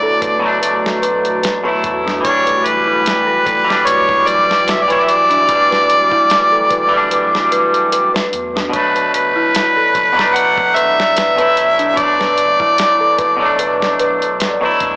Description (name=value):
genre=trip hop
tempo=74 BPM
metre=4/4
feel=swing 55% on 16ths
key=B minor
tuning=A4 = 440 Hz
part: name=mellow harmonica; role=melody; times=0.0-13.6 s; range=B4 to F#5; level=-13 LUFS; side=equal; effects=tape echo
part: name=semi-hollow electric guitar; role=accompaniment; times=0.0-15.0 s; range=B2 to E4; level=-17 LUFS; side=equal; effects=harmonic tremolo, vintage 12-bit sampler grit, tape echo
part: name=deep dark ambient pad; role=sustained chords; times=0.0-15.0 s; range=A3 to D5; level=-27 LUFS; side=equal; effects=chorus, built-in reverb, vintage 12-bit sampler grit
part: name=dark detuned synth bell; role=arpeggios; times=0.0-15.0 s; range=D4 to B4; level=-21 LUFS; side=equal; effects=chorus, phaser, tape echo
part: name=warm sub bass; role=bass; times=0.2-15.0 s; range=F#1 to E2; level=-39 LUFS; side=equal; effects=none
part: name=dusty soul sampler-style drum kit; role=drums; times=0.2-15.0 s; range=hi-hat, kick drum, snare drum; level=-21 LUFS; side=equal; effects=none
room=moderate spring reverb, RT60 2.3 s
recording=blown-out, overdriven recording, overdrive, small speaker sound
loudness=-11 LUFS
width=side -23 dB against mid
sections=0.0-15.0 A section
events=none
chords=0.0 Bm7; 2.2 Em7; 8.7 Bm7